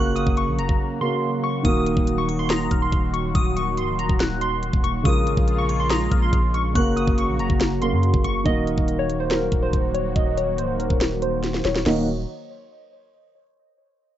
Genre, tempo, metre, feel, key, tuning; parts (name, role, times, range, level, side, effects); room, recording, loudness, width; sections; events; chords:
hip hop, trap; 141 BPM; 4/4; half-time; Eb dorian; A4 = 440 Hz
glassy wavetable pluck; melody; 0.0-12.1 s; Bb4 to Gb6; -27 LUFS; equal; chorus, low-pass filter, tape echo
glassy synth bell; second line; 0.0-8.4 s; Db6 to Gb6; -34 LUFS; left 5 dB; chorus, tape echo
warm concert grand piano; accompaniment; 0.0-12.1 s; Db3 to Bb4; -26 LUFS; right 1 dB; low-pass filter
warm analog pad; sustained chords; 0.1-12.1 s; Db3 to Gb4; -29 LUFS; equal; chorus, low-pass filter
long sustained 808-style bass; bass; 0.0-12.3 s; Db1 to Gb2; -26 LUFS; equal
trap drum kit; drums; 0.2-12.0 s; crash cymbal, hi-hat, kick drum, snare drum; -22 LUFS; equal
light reverb; nothing above 7.8 kHz; -19 LUFS; side -12 dB against mid
0.0-8.5 A section; 8.5-11.9 B section; 11.9-13.6 C section
break 0.8-1.6; filter sweep 8.5-11.9; drum fill 11.4-11.9
0.0 Gb; 1.6 Ebm; 5.1 Bbm7; 6.8 Gb; 8.5 Ebm